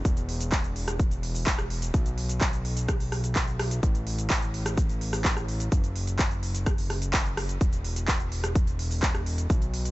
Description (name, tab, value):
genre	EDM, festival progressive house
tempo	127 BPM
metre	4/4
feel	straight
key	F# minor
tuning	A4 = 437 Hz
part	fat analog bass	bass	0.0-9.9 s	E1 to B1	-30 LUFS	equal	sidechain pumping
part	big-room dance drum kit	drums	0.1-9.9 s	handclaps, hi-hat, rim click, shaker	-31 LUFS	equal	none
part	electronic kick drum	drums	0.1-9.6 s	none	-26 LUFS	equal	none
room	little or no reverb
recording	nothing above 7.9 kHz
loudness	-25 LUFS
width	side -18 dB against mid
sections	0.0-9.9 A section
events	none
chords	none